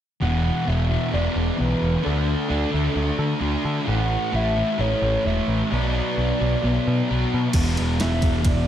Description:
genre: rock, shoegaze and dream pop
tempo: 131 BPM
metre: 4/4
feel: straight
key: unclear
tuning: A4 = 440 Hz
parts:
  - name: pure sine lead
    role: melody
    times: 0.2-8.7 s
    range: A4 to F#5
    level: -28 LUFS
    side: right 1 dB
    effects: chorus, tape echo
  - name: fuzz guitar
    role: riff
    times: 0.2-8.7 s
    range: E2 to D4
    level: -23 LUFS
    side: equal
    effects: distortion, wide subtle chorus
  - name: growling picked electric bass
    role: bass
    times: 0.2-8.7 s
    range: E1 to D3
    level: -23 LUFS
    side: equal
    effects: overdrive
  - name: crisp 8-bit digital drum machine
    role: drums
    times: 7.5-8.6 s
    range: crash cymbal, kick drum, ride cymbal, snare drum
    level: -23 LUFS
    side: equal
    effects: overdrive
room: moderate lush hall reverb, RT60 1.8 s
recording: dreamy mix soaked in reverb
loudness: -20 LUFS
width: side -10 dB against mid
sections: 0.2-7.5 A section; 7.5-8.7 B section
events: none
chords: 0.2 E5; 2.0 D5; 3.9 A; 5.7 Bm; 7.5 E5

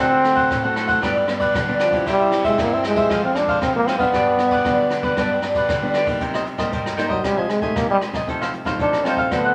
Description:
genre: samba and choro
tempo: 116 BPM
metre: 4/4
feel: straight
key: C minor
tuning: A4 = 441 Hz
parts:
  - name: breathy trombone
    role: melody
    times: 0.0-9.5 s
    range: F3 to D4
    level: -22 LUFS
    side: equal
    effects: none
  - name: cavaquinho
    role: accompaniment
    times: 0.0-9.5 s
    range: D4 to Ab5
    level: -26 LUFS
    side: equal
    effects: none
  - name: nylon-string guitar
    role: accompaniment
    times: 0.0-9.5 s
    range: F2 to G4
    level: -25 LUFS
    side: equal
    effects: none
  - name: jazz brush drum kit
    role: drums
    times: 0.2-9.4 s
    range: hi-hat, kick drum, ride cymbal, rim click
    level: -30 LUFS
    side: equal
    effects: none
room: wet studio reverb, RT60 0.7 s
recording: none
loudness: -20 LUFS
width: mono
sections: 0.0-6.2 A section; 6.2-9.5 B section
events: trombone solo 6.2-9.5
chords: 0.0 D7; 1.0 G; 2.1 C; 3.1 Fm; 4.1 G; 6.2 Cm7; 7.2 Abmaj7/C; 8.3 F7/C

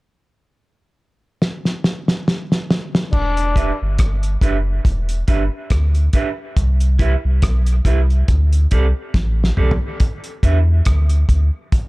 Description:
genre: dub reggae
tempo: 70 BPM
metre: 4/4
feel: swing 56% on 16ths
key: E minor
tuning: A4 = 440 Hz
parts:
  - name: cloth-damped thuddy drum kit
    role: drums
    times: 1.4-11.9 s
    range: crash cymbal, hi-hat, kick drum, rim click, snare drum, toms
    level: -18 LUFS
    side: equal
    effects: none
  - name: clear trombone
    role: second line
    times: 3.1-3.8 s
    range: D4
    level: -24 LUFS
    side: left 4 dB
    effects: dub echo
  - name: warm sub bass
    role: bass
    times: 3.1-11.5 s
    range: E1 to E2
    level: -16 LUFS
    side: equal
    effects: none
  - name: electric guitar through a small old amp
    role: accompaniment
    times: 3.6-10.6 s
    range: C4 to E5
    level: -26 LUFS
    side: right 5 dB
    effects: tremolo, dub echo
room: studio reverb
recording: dark, warm production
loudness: -15 LUFS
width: side -22 dB against mid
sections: 0.0-3.1 A section; 3.1-10.0 B section; 10.0-11.9 C section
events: drum fill 1.4-3.1, 9.1-10.0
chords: 0.0 N.C.; 3.1 Em7; 6.6 Cmaj7; 8.3 D7sus4; 10.0 E7(no3)

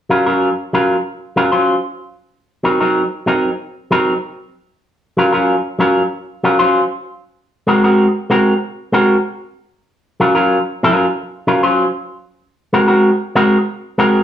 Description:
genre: funk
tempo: 95 BPM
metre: 4/4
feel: straight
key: unclear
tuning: A4 = 441 Hz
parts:
  - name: electric guitar with an envelope filter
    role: accompaniment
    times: 0.1-14.2 s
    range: Gb3 to C5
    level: -13 LUFS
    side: equal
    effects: none
room: wet large studio reverb, RT60 0.8 s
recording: band playing live in one room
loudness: -13 LUFS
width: side -10 dB against mid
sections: 0.0-4.5 A section; 4.5-14.2 B section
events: none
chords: 0.0 Gbmaj7; 2.0 Gb6; 4.5 Gbmaj7; 7.1 Ab9; 9.6 Gbmaj7; 12.1 Ab9

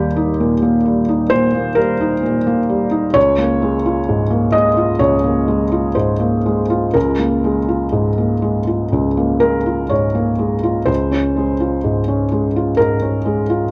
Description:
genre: neoclassical minimalist piano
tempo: 60-65 BPM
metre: 4/4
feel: rubato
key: Bb dorian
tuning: A4 = 440 Hz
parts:
  - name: felt-muted upright piano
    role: solo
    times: 0.0-13.7 s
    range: Db2 to Eb5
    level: -16 LUFS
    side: equal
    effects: none
room: light reverb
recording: worn, warbling old tape, cassette tape, warbly pitch drift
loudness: -16 LUFS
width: mono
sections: 0.0-13.7 A section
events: none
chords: 0.0 Eb; 3.2 Bbm7/Db; 10.9 Dbmaj7

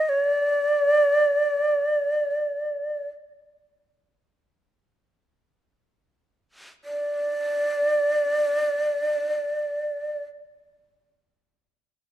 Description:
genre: japanese traditional, Japanese chamber music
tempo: free time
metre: none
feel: none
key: unclear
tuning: A4 = 440 Hz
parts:
  - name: breathy shakuhachi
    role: solo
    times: 0.0-10.2 s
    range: D5 to Eb5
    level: -21 LUFS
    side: right 1 dB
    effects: none
room: moderate recital hall reverb, RT60 1.5 s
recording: dark, warm production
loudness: -21 LUFS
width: side -12 dB against mid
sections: 0.0-6.9 A section; 6.9-11.4 B section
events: slowing down 0.0-6.9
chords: none

